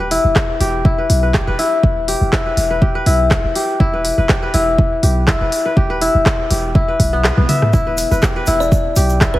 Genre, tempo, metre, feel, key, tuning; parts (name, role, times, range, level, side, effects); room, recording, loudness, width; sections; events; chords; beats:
afro house; 122 BPM; 4/4; swing 54% on 16ths; E minor; A4 = 439 Hz
kora; arpeggios; 0.0-9.4 s; B3 to E5; -17 LUFS; left 2 dB; sidechain pumping, dub echo
warm 808-style bass; bass; 0.0-9.4 s; E1 to B1; -18 LUFS; equal; sidechain pumping
afro-pop drum kit; drums; 0.1-9.3 s; handclaps, hi-hat, rim click, toms; -20 LUFS; equal
electronic kick drum; drums; 0.4-9.3 s; -16 LUFS; equal
tube shaker; percussion; 7.7-9.3 s; -29 LUFS; right 2 dB
kalimba; melody; 8.6-9.4 s; B4 to D5; -22 LUFS; right 2 dB
moderate concert hall reverb, RT60 2.0 s, digital ambience; heavily compressed radio sound; -13 LUFS; side -16 dB against mid
0.0-9.4 A section
kick drops out 7.2-7.7; drum fill 7.4-7.7
0.0 Em
0.36 0.85 1.34 | 1.83 2.33 2.82 3.31 | 3.80 4.29 4.78 5.28 | 5.77 6.26 6.75 7.24 | 7.74 8.23 8.72 9.21